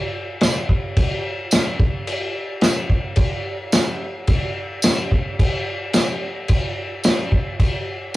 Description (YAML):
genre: rock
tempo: 109 BPM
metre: 4/4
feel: straight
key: none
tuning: none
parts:
  - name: vintage drum kit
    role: drums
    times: 0.4-8.2 s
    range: crash cymbal, kick drum, snare drum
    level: -18 LUFS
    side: equal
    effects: none
  - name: tambourine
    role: percussion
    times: 0.4-8.2 s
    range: none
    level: -25 LUFS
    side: equal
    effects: none
room: wet booth ambience, RT60 0.3 s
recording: rough rehearsal-room recording, cassette tape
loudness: -18 LUFS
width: side -17 dB against mid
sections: 0.0-8.2 A section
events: none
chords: none